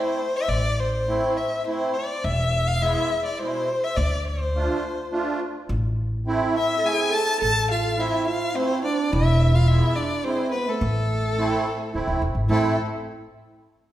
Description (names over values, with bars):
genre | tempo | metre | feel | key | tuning
klezmer | 105 BPM | 3/4 | straight | A harmonic minor | A4 = 439 Hz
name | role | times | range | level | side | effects
warm violin | melody | 0.0-12.8 s | A4 to A5 | -25 LUFS | left 2 dB | none
musette accordion | accompaniment | 0.0-12.8 s | B2 to F4 | -27 LUFS | right 3 dB | none
upright bass | bass | 0.5-12.8 s | C1 to D2 | -23 LUFS | equal | none
dark clarinet | second line | 6.5-12.8 s | A3 to A4 | -27 LUFS | right 4 dB | none
room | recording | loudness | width
wet recital hall reverb, RT60 1.5 s | recorded in a church or concert hall | -21 LUFS | side -13 dB against mid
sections
0.0-12.5 A section; 12.5-13.9 B section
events
speeding up 0.0-13.9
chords
0.0 Am; 2.2 E; 4.0 Dm; 5.7 Am; 9.1 E; 10.8 Am